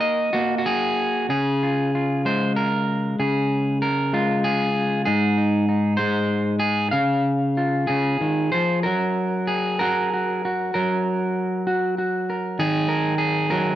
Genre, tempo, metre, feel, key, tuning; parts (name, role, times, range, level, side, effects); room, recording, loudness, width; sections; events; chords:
folk, solo fingerstyle acoustic guitar; 64 BPM (dotted quarters); 6/8; rubato; Db major; A4 = 439 Hz
electric guitar at the edge of break-up; solo; 0.0-13.8 s; Ab2 to F5; -20 LUFS; equal
light reverb; -20 LUFS; side -12 dB against mid
0.0-8.8 A section; 8.8-13.8 B section
0.0 N.C.; 1.3 Db; 5.1 Ab; 6.9 Db; 8.8 Gb; 12.6 Ebm